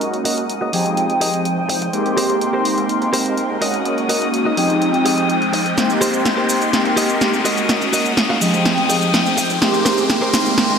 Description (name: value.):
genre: filtered disco house.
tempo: 125 BPM.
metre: 4/4.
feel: straight.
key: Ab major.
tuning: A4 = 440 Hz.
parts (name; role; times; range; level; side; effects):
mellow synth brass; accompaniment; 0.0-10.8 s; F3 to G5; -18 LUFS; right 1 dB; chorus, phaser, cassette tape, low-pass filter.
warm studio string section; sustained chords; 0.0-10.8 s; Ab3 to Eb6; -24 LUFS; left 4 dB; low-pass filter.
direct-recorded clean electric guitar; riff; 0.0-10.5 s; Gb4 to F5; -24 LUFS; equal; low-pass filter.
fat analog bass; bass; 0.0-10.8 s; C2 to Ab2; -32 LUFS; equal; none.
punchy analog drum machine; drums; 0.0-10.8 s; hi-hat, shaker, snare drum; -20 LUFS; right 1 dB; gated reverb.
riser; sound effects; 1.5-10.8 s; none; -25 LUFS; left 2 dB; none.
room: wet lush hall reverb, RT60 1.9 s.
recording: bright 1980s-style digital production.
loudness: -15 LUFS.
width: side -6 dB against mid.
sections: 0.0-10.8 A section.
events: build-up 0.0-10.8; filter sweep 0.0-10.8; riser 1.5-10.8; drum fill 5.8-10.8.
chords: 0.0 Gb6; 0.7 Fm9; 1.9 Abmaj9; 3.6 Gb6; 4.6 Fm9; 5.8 Abmaj9; 7.5 Gb6; 8.4 Fm9; 9.6 Abmaj9.